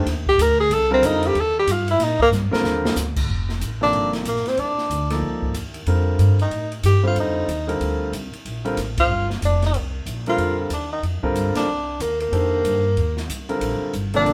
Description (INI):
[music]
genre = modal jazz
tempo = 186 BPM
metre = 4/4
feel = swing 62% on 8ths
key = unclear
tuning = A4 = 440 Hz
[part]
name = clear concert grand piano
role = accompaniment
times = 0.0-14.3 s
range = C3 to D5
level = -27 LUFS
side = equal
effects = none
[part]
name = upright bass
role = bass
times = 0.0-14.3 s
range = F1 to Bb2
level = -26 LUFS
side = equal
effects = none
[part]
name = open jazz drum kit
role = drums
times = 0.1-14.3 s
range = crash cymbal, hi-hat, kick drum, ride cymbal, snare drum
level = -32 LUFS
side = equal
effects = none
[part]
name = warm tenor saxophone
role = melody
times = 0.3-14.3 s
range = Bb3 to Bb4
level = -22 LUFS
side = equal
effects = none
[part]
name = dark trombone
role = second line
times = 14.2-14.3 s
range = D3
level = -26 LUFS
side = equal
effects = none
[sound]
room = light reverb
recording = band playing live in one room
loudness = -21 LUFS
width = mono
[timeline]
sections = 0.0-3.3 A section; 3.3-14.3 B section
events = tenor saxophone solo 0.0-3.3; drum fill 2.3-3.0; band accent 8.9, 11.5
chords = 0.0 F13sus4